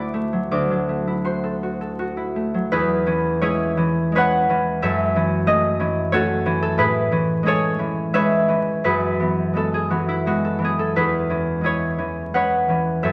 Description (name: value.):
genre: classical, solo harp piece.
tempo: 79-94 BPM.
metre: 3/4.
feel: rubato.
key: E major.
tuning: A4 = 440 Hz.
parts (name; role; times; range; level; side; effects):
concert harp; solo; 0.0-13.1 s; D2 to F#6; -21 LUFS; equal; none.
room: wet stone room reverb, RT60 1.3 s.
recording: vinyl crackle.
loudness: -21 LUFS.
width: mono.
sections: 0.0-2.7 A section; 2.7-13.1 B section.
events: none.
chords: 0.0 Dadd9; 0.5 D9; 2.7 E6; 4.8 F#m7; 6.8 Amaj9; 8.8 F#m11; 11.0 E6.